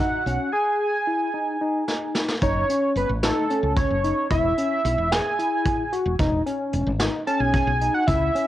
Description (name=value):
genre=progressive instrumental, band music in an uneven meter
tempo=223 BPM (eighths)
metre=7/8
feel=straight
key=F# dorian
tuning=A4 = 440 Hz
part: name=wide unison lead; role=melody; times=0.0-8.5 s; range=A4 to A5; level=-24 LUFS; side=right 2 dB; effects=cassette tape, tape echo
part: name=barky tine electric piano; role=arpeggios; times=0.0-8.5 s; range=C#4 to G#4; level=-26 LUFS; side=left 2 dB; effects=analog chorus, cassette tape
part: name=vintage brush drum kit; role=drums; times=0.0-8.5 s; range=hi-hat, kick drum, snare drum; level=-26 LUFS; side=equal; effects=none
part: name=woody fretless electric bass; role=bass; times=0.3-8.3 s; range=E1 to C#2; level=-25 LUFS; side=equal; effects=none
room=light reverb, small room ambience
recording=home recording on cassette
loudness=-20 LUFS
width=side -13 dB against mid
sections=0.0-2.4 A section; 2.4-8.5 B section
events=drum fill 1.9-2.4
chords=0.0 Emaj7 (rootless); 2.4 F#m; 4.3 C#m/E (rootless); 6.2 E6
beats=0.26 | 0.53 0.80 1.07 1.34 1.61 1.88 2.15 | 2.42 2.69 2.96 3.23 3.50 3.77 4.04 | 4.31 4.58 4.85 5.12 5.38 5.66 5.92 | 6.19 6.46 6.73 7.00 7.27 7.54 7.81 | 8.08 8.35